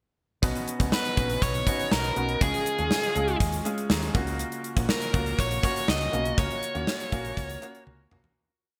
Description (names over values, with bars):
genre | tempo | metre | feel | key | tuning
1980s-style pop | 121 BPM | 4/4 | straight | F# major | A4 = 441 Hz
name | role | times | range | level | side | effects
clear concert grand piano | accompaniment | 0.4-8.4 s | B2 to A#5 | -34 LUFS | equal | lush chorus
woody fretless electric bass | bass | 0.4-8.3 s | A#1 to D#2 | -34 LUFS | equal | none
gated 80s drum kit | drums | 0.4-8.4 s | hi-hat, kick drum, snare drum, toms | -30 LUFS | equal | none
biting lead guitar | melody | 0.9-7.8 s | G#4 to D#5 | -32 LUFS | equal | overdrive
room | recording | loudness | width
moderate lush hall reverb, RT60 2.2 s | bright 1980s-style digital production | -27 LUFS | mono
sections
0.4-8.4 verse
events
grand piano fill 3.7-4.4; fade-out 6.4-8.4; drum fill 7.9-8.4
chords
0.4 Badd9; 2.4 C#; 4.1 F#maj7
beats
| 0.43 0.93 1.42 1.92 | 2.41 2.91 3.40 3.90 | 4.40 4.89 5.39 5.88 | 6.38 6.88 7.37 7.87